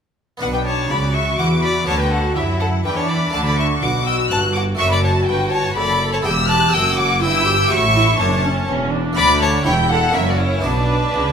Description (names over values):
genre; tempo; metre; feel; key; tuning
classical, baroque-style concerto movement with solo episodes; 123 BPM; 3/4; straight; B minor; A4 = 438 Hz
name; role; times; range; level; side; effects
clear violin; melody; 0.4-11.3 s; D4 to A5; -22 LUFS; left 1 dB; none
rich symphonic violin section; melody; 0.4-11.3 s; B4 to F#6; -23 LUFS; left 3 dB; none
rich chamber violin section; second line; 0.4-11.3 s; B4 to F#6; -22 LUFS; left 1 dB; none
harpsichord; accompaniment; 0.4-11.3 s; D2 to G4; -27 LUFS; right 1 dB; none
rich studio viola section; accompaniment; 0.4-11.3 s; C#4 to A4; -23 LUFS; right 1 dB; none
rich chamber cello section; bass; 0.4-11.3 s; D2 to F#3; -23 LUFS; right 2 dB; none
rich chamber double bass section; bass; 0.4-11.3 s; E1 to F#2; -23 LUFS; right 1 dB; none
room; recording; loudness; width
wet recital hall reverb, RT60 1.7 s; minimal, uncompressed stereo recording; -15 LUFS; side -7 dB against mid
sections
0.4-11.3 A section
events
none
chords
0.4 Bm; 1.9 Bm/D; 3.3 D; 4.8 D/F#; 6.3 Em; 7.7 A7; 9.2 D; 9.7 C#dim/E; 10.1 F#7; 10.6 Bm